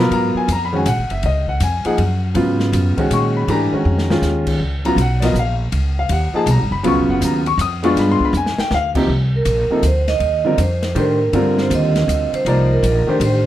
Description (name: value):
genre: modal jazz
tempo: 160 BPM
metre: 3/4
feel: swing 65% on 8ths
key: G# dorian, C dorian from 9.1 s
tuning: A4 = 439 Hz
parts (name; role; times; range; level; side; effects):
- clear concert grand piano; accompaniment; 0.0-13.5 s; B#2 to D#6; -18 LUFS; left 1 dB; none
- upright bass; bass; 0.0-13.5 s; F#1 to A#2; -18 LUFS; equal; none
- open jazz drum kit; drums; 0.1-13.3 s; crash cymbal, hi-hat, kick drum, ride cymbal, snare drum; -27 LUFS; left 2 dB; none
- vibraphone with medium hard mallets; melody; 9.4-13.5 s; Bb4 to Eb5; -19 LUFS; right 4 dB; plate reverb
room: light reverb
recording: dark, warm production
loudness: -15 LUFS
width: side -13 dB against mid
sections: 0.1-9.1 A section; 9.1-13.5 A section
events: drum fill 3.9-4.2, 8.3-8.7; vibraphone solo 9.1-13.5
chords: 0.1 G#13sus4; 8.0 G7b9; 9.1 Cm9